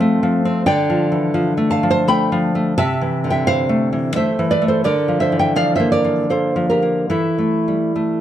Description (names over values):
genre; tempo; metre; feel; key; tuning
romantic piece for solo classical guitar; 70-91 BPM; 3/4; rubato; A minor; A4 = 441 Hz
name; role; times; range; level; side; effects
nylon-string guitar; solo; 0.0-8.2 s; C3 to B5; -15 LUFS; equal; none
room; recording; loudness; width
moderate recital hall reverb, RT60 1.3 s; dark, warm production; -15 LUFS; side -11 dB against mid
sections
0.0-8.2 A section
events
none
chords
0.0 F; 0.7 Dm; 2.8 Am/C; 4.9 Bb/D; 7.1 A5/E